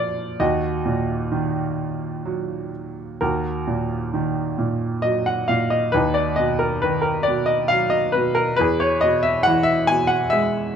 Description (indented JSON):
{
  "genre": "classical, lyrical solo piano",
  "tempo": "66 BPM",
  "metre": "3/4",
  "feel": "uneven beats, rubato",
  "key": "Eb harmonic minor",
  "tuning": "A4 = 438 Hz",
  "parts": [
    { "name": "clear baby grand piano", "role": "solo", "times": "0.0-10.8 s", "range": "Eb2 to G#5", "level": "-19 LUFS", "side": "equal", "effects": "none" }
  ],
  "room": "light reverb",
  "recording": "close, detailed microphones",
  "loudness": "-19 LUFS",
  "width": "side -8 dB against mid",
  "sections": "0.0-3.2 A section; 3.2-10.8 B section",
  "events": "none",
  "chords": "0.4 Ebm; 5.9 B/D#; 8.6 E"
}